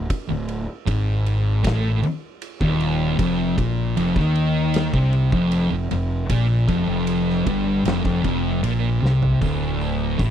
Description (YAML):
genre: stoner and doom metal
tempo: 77 BPM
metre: 4/4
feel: straight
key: unclear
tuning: A4 = 440 Hz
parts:
  - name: thick fuzz guitar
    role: riff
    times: 0.0-10.3 s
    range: D2 to Eb3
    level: -23 LUFS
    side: left 7 dB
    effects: distortion
  - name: fuzz fingered electric bass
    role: bass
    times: 0.0-10.3 s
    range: D1 to Eb2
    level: -26 LUFS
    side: equal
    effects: overdrive
  - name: oversized low-tuned drum kit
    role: drums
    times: 0.1-10.3 s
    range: hi-hat, kick drum, ride cymbal, snare drum, toms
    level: -27 LUFS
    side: equal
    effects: none
  - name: thick fuzz guitar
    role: riff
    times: 0.3-10.3 s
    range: D2 to Eb3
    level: -23 LUFS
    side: right 6 dB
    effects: distortion
room: little or no reverb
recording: dry, close 1970s-style studio recording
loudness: -18 LUFS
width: side -9 dB against mid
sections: 0.0-9.4 A section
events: drum fill 9.0-9.4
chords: 0.0 D5; 3.2 F5; 9.4 D5